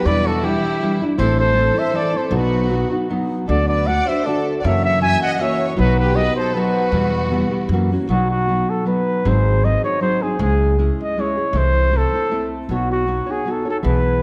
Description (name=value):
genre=mexican folk, mariachi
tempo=157 BPM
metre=3/4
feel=straight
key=E minor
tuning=A4 = 440 Hz
part: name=dark trumpet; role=melody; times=0.0-14.2 s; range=F#4 to G#5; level=-23 LUFS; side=equal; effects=none
part: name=warm symphonic violin section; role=second line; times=0.0-7.7 s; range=E4 to E5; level=-28 LUFS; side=equal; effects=none
part: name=nylon-string guitar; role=accompaniment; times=0.0-14.2 s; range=E2 to C#5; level=-23 LUFS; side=equal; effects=none
part: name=upright bass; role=bass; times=0.1-14.2 s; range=G#1 to F#2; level=-23 LUFS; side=equal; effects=none
room=wet concert hall reverb, RT60 2.2 s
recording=dark, warm production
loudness=-18 LUFS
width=mono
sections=0.0-8.1 A section; 8.1-14.2 B section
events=none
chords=0.1 Em7; 1.2 Am; 2.3 B; 3.5 D; 4.6 F#7; 5.8 B; 6.9 Em; 7.7 F#7; 8.1 B; 9.3 G#7; 10.4 C#m; 11.5 Am/C; 12.7 Badd9